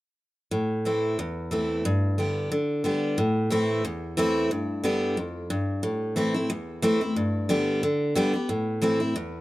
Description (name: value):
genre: bluegrass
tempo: 181 BPM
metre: 4/4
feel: swing 55% on 8ths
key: A minor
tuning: A4 = 439 Hz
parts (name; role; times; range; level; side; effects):
- picked steel-string acoustic guitar; solo; 0.5-9.4 s; E2 to G4; -24 LUFS; equal; none
room: light reverb, studio ambience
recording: dry, close 1970s-style studio recording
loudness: -24 LUFS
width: side -17 dB against mid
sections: 0.5-3.2 A section; 3.2-9.4 B section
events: none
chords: 0.5 Am; 1.8 G; 3.2 Am; 4.5 G; 5.8 Am; 7.2 G; 8.5 Am